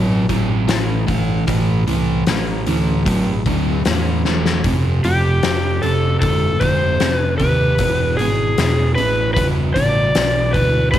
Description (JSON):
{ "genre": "blues rock power trio and southern rock", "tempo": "76 BPM", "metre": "4/4", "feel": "straight", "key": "A minor", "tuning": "A4 = 440 Hz", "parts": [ { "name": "fuzz guitar", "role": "riff", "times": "0.0-11.0 s", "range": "E2 to F#3", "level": "-19 LUFS", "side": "right 1 dB", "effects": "distortion" }, { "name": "overdriven fingered electric bass", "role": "bass", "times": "0.0-11.0 s", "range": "E1 to E2", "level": "-21 LUFS", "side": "right 1 dB", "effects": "none" }, { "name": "oversized low-tuned drum kit", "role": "drums", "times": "0.3-11.0 s", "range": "hi-hat, kick drum, snare drum", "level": "-22 LUFS", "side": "left 3 dB", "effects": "none" }, { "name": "overdriven slide guitar", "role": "melody", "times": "5.0-11.0 s", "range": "G4 to D5", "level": "-19 LUFS", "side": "left 1 dB", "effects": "none" } ], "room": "light reverb, small room ambience", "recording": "1960s-style stereo", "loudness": "-15 LUFS", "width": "side -11 dB against mid", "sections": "0.0-11.0 A section", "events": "drum fill 4.2-4.6", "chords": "0.0 A5; 4.6 F5; 7.8 E7", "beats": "0.69 | 1.48 2.27 3.06 3.85 | 4.64 5.43 6.22 7.00 | 7.79 8.58 9.36 10.15 | 10.93" }